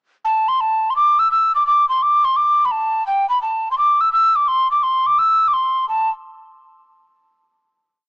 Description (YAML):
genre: celtic folk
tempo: 170 BPM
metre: 4/4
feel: swing 65% on 8ths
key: A minor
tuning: A4 = 440 Hz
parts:
  - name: mellow hollow mid whistle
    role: solo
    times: 0.2-6.1 s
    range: G5 to E6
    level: -14 LUFS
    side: equal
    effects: cassette tape
room: light reverb, small room ambience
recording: home recording on cassette, small speaker sound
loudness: -14 LUFS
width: side -32 dB against mid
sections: 0.3-5.9 A section; 5.9-7.3 final note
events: none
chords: none